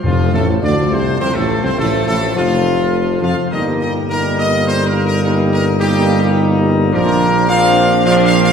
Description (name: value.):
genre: classical, ceremonial fanfare.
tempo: 105 BPM.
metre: 3/4.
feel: straight.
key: F mixolydian.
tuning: A4 = 445 Hz.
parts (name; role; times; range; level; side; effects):
clear trumpet section; melody; 0.0-8.5 s; F4 to F5; -18 LUFS; left 1 dB; none.
chamber organ, principal chorus; sustained chords; 0.0-8.5 s; F3 to C5; -21 LUFS; left 1 dB; none.
mellow trombone section; sustained chords; 0.0-8.5 s; F2 to G3; -20 LUFS; right 2 dB; none.
warm French horn section; sustained chords; 0.0-8.5 s; F3 to F4; -21 LUFS; left 4 dB; none.
dark tuba; bass; 0.0-8.5 s; F1 to F2; -17 LUFS; right 2 dB; none.
timpani; percussion; 0.0-0.9 s; F2; -20 LUFS; left 2 dB; none.
room: wet concert hall reverb, RT60 1.9 s.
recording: heard from further back in the room.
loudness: -12 LUFS.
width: side -7 dB against mid.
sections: 0.0-8.5 A section.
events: none.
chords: 0.0 F; 3.5 Eb/G; 6.9 Bbadd9.